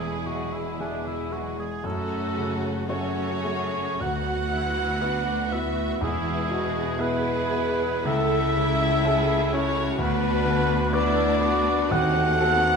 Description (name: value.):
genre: classical.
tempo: 51-66 BPM.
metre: 4/4.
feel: rubato.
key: unclear.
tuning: A4 = 440 Hz.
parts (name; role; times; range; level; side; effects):
clear concert grand piano; melody; 0.0-12.8 s; C#2 to E5; -28 LUFS; left 2 dB; none.
clear symphonic violin section; melody; 0.0-12.8 s; D4 to F#5; -34 LUFS; left 3 dB; none.
rich symphonic violin section; second line; 0.0-12.8 s; A3 to G#4; -33 LUFS; left 2 dB; none.
warm cor anglais; second line; 0.0-12.8 s; D4 to F#5; -28 LUFS; right 2 dB; none.
rich symphonic viola section; accompaniment; 0.0-12.8 s; B3 to A4; -32 LUFS; right 3 dB; none.
mellow French horn section; sustained chords; 0.0-12.8 s; D3 to F#4; -32 LUFS; left 4 dB; none.
clear studio cello section; bass; 0.0-12.8 s; C#2 to F#2; -34 LUFS; right 4 dB; none.
rich symphonic double bass section; bass; 0.0-12.8 s; E1 to D#2; -34 LUFS; right 3 dB; none.
timpani; percussion; 6.0-7.5 s; E2; -37 LUFS; right 1 dB; none.
room: wet scoring stage reverb, RT60 1.5 s.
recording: minimal, uncompressed stereo recording.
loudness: -22 LUFS.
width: side -5 dB against mid.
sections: 0.0-12.8 A section.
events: none.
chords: 0.0 E; 1.8 F#m; 4.0 Bm/D; 6.0 E; 8.1 A/C#; 10.0 Bm/D; 11.9 D#dim7.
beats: 0.80 | 1.84 2.89 4.01 5.02 | 6.02 7.01 8.07 9.06 | 10.00 10.94 11.91.